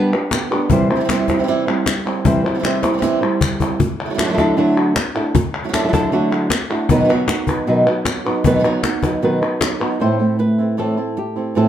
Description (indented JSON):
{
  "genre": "flamenco",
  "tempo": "155 BPM",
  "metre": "4/4",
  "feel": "straight",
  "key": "B phrygian dominant",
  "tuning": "A4 = 440 Hz",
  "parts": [
    { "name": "flamenco guitar", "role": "melody", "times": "0.0-11.7 s", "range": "A2 to C5", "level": "-17 LUFS", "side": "equal", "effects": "none" },
    { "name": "palmas hand claps", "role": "percussion", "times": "0.1-10.0 s", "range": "none", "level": "-25 LUFS", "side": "left 3 dB", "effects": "none" },
    { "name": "flamenco guitar", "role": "stabs", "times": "0.3-11.7 s", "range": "A2 to G4", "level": "-22 LUFS", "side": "right 4 dB", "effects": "none" },
    { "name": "cajon", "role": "percussion", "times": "0.3-9.8 s", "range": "none", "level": "-21 LUFS", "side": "left 3 dB", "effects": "none" }
  ],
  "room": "moderate studio reverb, RT60 0.9 s",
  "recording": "none",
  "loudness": "-15 LUFS",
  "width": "side -10 dB against mid",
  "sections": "0.0-10.0 A section; 10.0-11.7 B section",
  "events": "drum fill 2.6-3.8",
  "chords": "0.0 G; 0.7 C; 3.8 Dadd9; 6.9 B; 10.0 Am",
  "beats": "0.32 | 0.71 1.09 1.48 1.87 | 2.25 2.64 3.03 3.42 | 3.80 4.19 4.58 4.96 | 5.35 5.74 6.13 6.51 | 6.90 7.29 7.68 8.06 | 8.45 8.84 9.23 9.62 | 10.01 10.39 10.78 11.17 | 11.56"
}